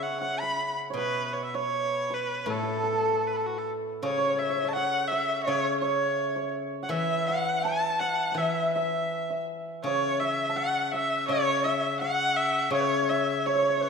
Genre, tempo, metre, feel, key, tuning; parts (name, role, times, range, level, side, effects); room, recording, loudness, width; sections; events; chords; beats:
chinese traditional, Chinese chamber ensemble; 82 BPM; 2/4; rubato; A4 = 440 Hz
clear erhu; melody; 0.0-13.9 s; F#4 to B5; -28 LUFS; equal
hammered dulcimer; second line; 0.0-13.9 s; A4 to B5; -31 LUFS; right 6 dB
steel-string zither; accompaniment; 0.0-13.9 s; A2 to E3; -32 LUFS; left 3 dB
large dizi; second line; 4.0-13.9 s; B4 to A5; -31 LUFS; left 6 dB
wet scoring stage reverb, RT60 1.8 s; minimal, uncompressed stereo recording; -25 LUFS; side -5 dB against mid
0.0-4.0 A section; 4.0-13.9 B section
0.21 | 0.96 1.71 | 2.48 3.26 | 4.03 4.76 | 5.49 6.20 | 6.91 7.64 | 8.37 9.10 | 9.84 10.57 | 11.30 12.02 | 12.72 13.44